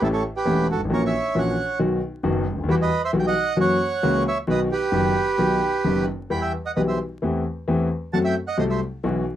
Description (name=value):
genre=tango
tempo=133 BPM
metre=4/4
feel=rubato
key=unclear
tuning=A4 = 439 Hz
part: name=bandoneon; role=melody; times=0.0-8.8 s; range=E4 to B5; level=-23 LUFS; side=right 4 dB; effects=none
part: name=warm concert grand piano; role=accompaniment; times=0.0-9.2 s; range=E1 to A4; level=-22 LUFS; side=left 1 dB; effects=none
room=little or no reverb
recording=dry, close 1970s-style studio recording, vinyl crackle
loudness=-20 LUFS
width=side -11 dB against mid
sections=0.0-9.4 A section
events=none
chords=0.0 A7; 0.9 F#7/A#; 1.8 B; 2.7 Emadd9; 3.6 F#7; 4.5 B; 6.3 Em; 7.2 Am7/E; 8.1 F#dim